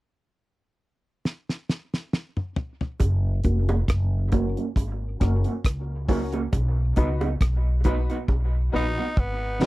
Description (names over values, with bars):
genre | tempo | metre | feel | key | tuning
dub reggae | 68 BPM | 4/4 | swing 55% on 16ths | F# major | A4 = 439 Hz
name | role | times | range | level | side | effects
damped 70s drum kit | drums | 1.3-9.7 s | hi-hat, kick drum, rim click, snare drum, toms | -23 LUFS | equal | none
upright bass | bass | 3.0-9.6 s | E#1 to C#2 | -24 LUFS | equal | transformer saturation
bongos | percussion | 3.0-9.7 s | none | -35 LUFS | right 3 dB | dub echo
electric guitar at the edge of break-up | accompaniment | 3.4-9.7 s | A#3 to F#4 | -30 LUFS | right 4 dB | analog chorus, low-pass filter, dub echo
bright upright piano | stabs | 3.4-9.7 s | C#4 to B4 | -33 LUFS | left 5 dB | low-pass filter, dub echo
raspy tenor saxophone | melody | 8.8-9.7 s | B3 to D#4 | -29 LUFS | left 1 dB | dub echo
room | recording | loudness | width
little or no reverb | dry, close 1970s-style studio recording | -22 LUFS | side -18 dB against mid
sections
0.0-3.0 A section; 3.0-9.7 B section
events
drum fill 1.2-3.0, 8.3-9.7; filter sweep 3.0-9.7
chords
0.0 N.C.; 3.0 F#; 6.5 B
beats
0.35 1.24 2.12 | 3.00 3.88 4.76 5.65 | 6.53 7.41 8.29 9.18